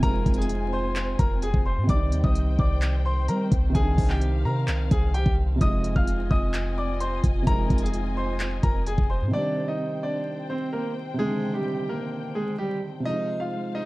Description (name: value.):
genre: hip hop, trap.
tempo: 129 BPM.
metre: 4/4.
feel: half-time.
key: C minor.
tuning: A4 = 440 Hz.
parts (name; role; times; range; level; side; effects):
clear concert grand piano; melody; 0.0-13.9 s; G3 to F6; -30 LUFS; equal; slapback echo.
felt-muted upright piano; accompaniment; 0.0-13.9 s; C3 to F4; -31 LUFS; right 2 dB; none.
muted studio string section; sustained chords; 0.0-13.9 s; Eb3 to Ab5; -36 LUFS; left 1 dB; none.
warm 808-style bass; bass; 0.0-9.3 s; F1 to G3; -25 LUFS; equal; none.
trap drum kit; drums; 0.0-9.1 s; handclaps, hi-hat, kick drum; -24 LUFS; equal; overdrive, vintage 12-bit sampler grit.
room: little or no reverb.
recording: dark, warm production, vinyl crackle.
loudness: -22 LUFS.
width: side -20 dB against mid.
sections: 0.0-9.3 A section; 9.3-13.9 B section.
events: none.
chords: 0.0 Fm7; 1.9 Cmadd9; 5.6 Fm7; 9.3 Cmadd9; 13.1 Fm7.